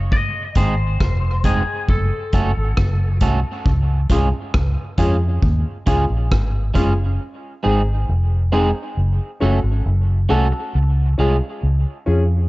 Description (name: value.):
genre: dub reggae.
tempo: 68 BPM.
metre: 4/4.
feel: straight.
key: Db major.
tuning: A4 = 436 Hz.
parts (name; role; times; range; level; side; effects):
vintage muted fingered electric bass; bass; 0.0-12.5 s; F1 to F2; -18 LUFS; equal; none.
lightly driven lead guitar; melody; 0.1-3.2 s; Ab4 to Eb5; -26 LUFS; left 3 dB; dub echo.
vintage drum kit; drums; 0.1-7.0 s; hi-hat, kick drum, rim click; -21 LUFS; equal; none.
electric guitar at the edge of break-up; accompaniment; 0.6-11.4 s; Ab3 to A4; -25 LUFS; right 3 dB; dub echo.
warm upright piano; stabs; 4.1-12.2 s; C4 to A4; -25 LUFS; left 2 dB; dub echo.
room: light reverb, small room ambience.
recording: dark, warm production, nothing above 7.8 kHz.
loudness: -16 LUFS.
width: side -20 dB against mid.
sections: 0.0-3.7 A section; 3.7-12.5 B section.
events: break 0.0-3.7; part muted 7.2-12.5.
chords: 0.1 Ab; 1.9 Gbm; 3.7 Db; 7.2 Ab; 9.0 Gbm; 10.7 Db.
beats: | 0.12 1.00 1.89 2.77 | 3.66 4.54 5.43 6.31 | 7.20 8.08 8.97 9.85 | 10.74 11.62.